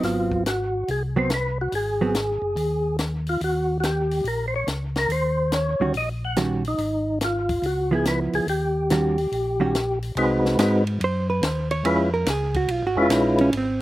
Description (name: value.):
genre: soul jazz organ trio.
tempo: 142 BPM.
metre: 4/4.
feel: swing 66% on 8ths.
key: Ab mixolydian.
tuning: A4 = 439 Hz.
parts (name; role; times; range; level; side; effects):
percussive tonewheel organ; melody; 0.0-13.5 s; Ab3 to F#5; -23 LUFS; equal; fast rotary speaker, slapback echo.
hollow-body jazz guitar; accompaniment; 0.0-2.1, 5.8-13.8 s; Eb3 to Db5; -23 LUFS; right 3 dB; none.
mellow tonewheel organ; bass; 0.0-13.8 s; F1 to Ab2; -27 LUFS; left 1 dB; slow rotary speaker.
compact cocktail drum kit; drums; 0.0-13.7 s; hi-hat, kick drum, ride cymbal, snare drum; -30 LUFS; left 1 dB; none.
room: little or no reverb.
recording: recorded outdoors, with no room sound.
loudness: -20 LUFS.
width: side -16 dB against mid.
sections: 0.0-10.2 A section; 10.2-13.8 B section.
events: hollow-body jazz guitar solo 10.2-13.8.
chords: 0.0 Ab7#9; 3.4 Eb7#9; 6.8 Ab5; 7.6 Db7#9; 8.5 Eb7#9; 10.2 Ab7#9; 11.8 Db7#9.